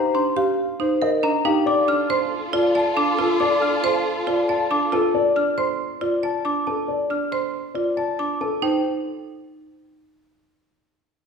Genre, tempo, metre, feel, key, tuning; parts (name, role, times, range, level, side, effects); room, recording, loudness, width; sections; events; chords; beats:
classical, minimalist pattern music; 138 BPM; 4/4; straight; Eb lydian; A4 = 437 Hz
dark concert grand piano; melody; 0.0-8.8 s; G4 to C6; -23 LUFS; left 4 dB
worn celesta; arpeggios; 0.0-8.8 s; F5 to F6; -26 LUFS; left 2 dB
marimba with hard mallets; arpeggios; 0.1-8.8 s; D4 to D5; -23 LUFS; right 4 dB
dark studio string section; sustained chords; 1.7-4.9 s; F4 to A4; -26 LUFS; left 1 dB
wet recital hall reverb, RT60 1.4 s; recorded in a church or concert hall; -19 LUFS; side -6 dB against mid
0.0-8.6 A section; 8.6-10.4 B section
0.0 Ebmaj9; 1.7 F; 8.6 Eb
0.36 0.80 1.23 | 1.66 2.10 2.53 2.97 | 3.40 3.84 4.27 4.71 | 5.14 5.58 6.01 6.45 | 6.88 7.32 7.75 8.19 | 8.62